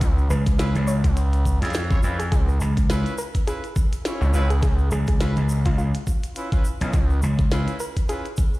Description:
glitch hop; 104 BPM; 4/4; swing 57% on 16ths; A4 = 439 Hz
gritty driven synth bass; bass; 0.0-7.2 s; C#2; -20 LUFS; equal; distortion, overdrive
electronic kick drum; drums; 0.0-8.5 s; -21 LUFS; equal; overdrive
glitchy drum kit; drums; 0.0-8.4 s; hi-hat, rim click, snare drum; -33 LUFS; equal
tube shaker; percussion; 0.0-8.6 s; -42 LUFS; right 1 dB
woody wave-folded pluck; melody; 0.3-8.5 s; E#4 to C#5; -34 LUFS; equal; chorus, digital delay
gritty slap bass; bass; 0.3-7.7 s; B1 to E#2; -22 LUFS; equal; overdrive
clear horn section; stabs; 0.6-8.3 s; C#4 to D#5; -32 LUFS; equal; vintage 12-bit sampler grit, sidechain pumping, digital delay
little or no reverb; played on a big sound system in a bare room, stone room reverb; -19 LUFS; side -19 dB against mid
0.0-8.6 A section
0.0 C#7#9

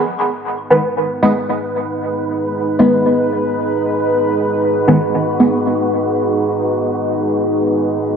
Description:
techno; free time; G# minor; A4 = 441 Hz
deep dark ambient pad; sustained chords; 1.1-8.2 s; G#3 to B4; -17 LUFS; equal; chorus, built-in reverb
wind-like tuned noise texture; texture; 0.5-8.2 s; B3 to B4; -24 LUFS; right 1 dB; built-in reverb
filtered dub chord stab; stabs; 0.7-5.5 s; D#3 to B3; -15 LUFS; equal; chorus, phaser, dub echo
wet lush hall reverb, RT60 1.6 s, digital ambience; -14 LUFS; side -6 dB against mid
0.0-8.2 A section
0.0 G#m

